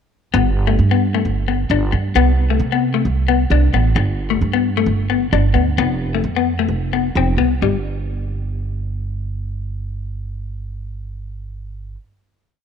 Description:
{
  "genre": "highlife guitar band",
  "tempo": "132 BPM",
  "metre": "4/4",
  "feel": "straight",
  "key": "G mixolydian",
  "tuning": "A4 = 439 Hz",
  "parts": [
    { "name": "clean electric guitar", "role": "accompaniment", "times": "0.3-7.8 s", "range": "G3 to D4", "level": "-18 LUFS", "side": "left 10 dB", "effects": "wide subtle chorus" },
    { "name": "upright bass", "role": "bass", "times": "0.3-11.9 s", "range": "F1 to C3", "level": "-19 LUFS", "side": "right 2 dB", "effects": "none" }
  ],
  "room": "light reverb, small room ambience",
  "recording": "none",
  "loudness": "-16 LUFS",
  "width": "side -8 dB against mid",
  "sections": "0.3-7.6 groove; 7.6-11.3 final note",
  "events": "none",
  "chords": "0.3 G; 2.2 N.C.; 4.0 G; 5.8 F; 7.6 N.C."
}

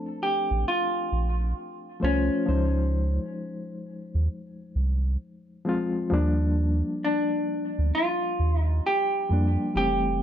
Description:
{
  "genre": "hip hop",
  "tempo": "66 BPM",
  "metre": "4/4",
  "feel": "swing 66% on 16ths",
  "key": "unclear",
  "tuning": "A4 = 443 Hz",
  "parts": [
    { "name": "vintage hollow-body jazz guitar", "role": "melody", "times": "0.0-10.2 s", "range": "Db4 to A4", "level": "-26 LUFS", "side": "equal", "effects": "low-pass filter, analog delay" },
    { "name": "reed electric piano", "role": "accompaniment", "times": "0.0-10.2 s", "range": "E3 to C5", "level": "-30 LUFS", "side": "left 2 dB", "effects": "fast tremolo, low-pass filter" },
    { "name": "soft dub sub bass", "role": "bass", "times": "0.5-10.2 s", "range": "F1 to F2", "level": "-24 LUFS", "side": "right 1 dB", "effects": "none" }
  ],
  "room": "light reverb",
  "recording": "none",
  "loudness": "-23 LUFS",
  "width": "side -10 dB against mid",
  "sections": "0.0-10.2 A section",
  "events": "none",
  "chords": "0.0 Bbmaj9; 2.5 Dbmaj9; 6.1 Ebmaj9"
}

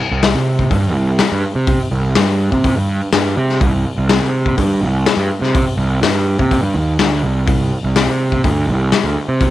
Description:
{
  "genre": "psychedelic rock",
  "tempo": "124 BPM",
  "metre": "4/4",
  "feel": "straight",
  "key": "C minor",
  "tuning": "A4 = 440 Hz",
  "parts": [
    { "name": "fuzz picked electric bass", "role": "bass", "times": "0.1-9.5 s", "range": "C2 to C3", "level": "-15 LUFS", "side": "right 1 dB", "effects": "overdrive" },
    { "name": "raw garage drum kit", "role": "drums", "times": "0.2-9.5 s", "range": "hi-hat, kick drum, snare drum", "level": "-17 LUFS", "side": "left 3 dB", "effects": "none" }
  ],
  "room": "little or no reverb",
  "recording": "1960s-style stereo",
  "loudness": "-13 LUFS",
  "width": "side -14 dB against mid",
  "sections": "0.0-9.5 A section",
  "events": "none",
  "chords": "none"
}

